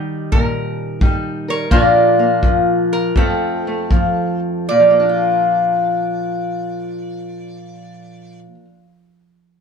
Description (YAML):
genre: acoustic country blues, solo or duo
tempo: 76-88 BPM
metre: 4/4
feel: swing 67% on 8ths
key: Bb major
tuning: A4 = 441 Hz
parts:
  - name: lap resonator guitar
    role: melody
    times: 0.0-8.4 s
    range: G4 to D5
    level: -17 LUFS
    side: right 4 dB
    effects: none
  - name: fingerpicked steel-string acoustic guitar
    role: accompaniment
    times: 0.0-8.8 s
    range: F2 to Bb4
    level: -17 LUFS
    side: left 2 dB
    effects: none
  - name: kick drum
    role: drums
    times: 0.3-4.1 s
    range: none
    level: -15 LUFS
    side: equal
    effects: none
room: light reverb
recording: band playing live in one room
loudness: -14 LUFS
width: side -6 dB against mid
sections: 0.0-4.7 A section; 4.7-7.8 B section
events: slowing down 0.0-4.7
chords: 0.0 Eb; 1.7 Bb; 3.2 F; 4.7 Bb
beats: 0.32 1.01 | 1.71 2.42 3.15 3.91 | 4.68 5.47 6.26 7.05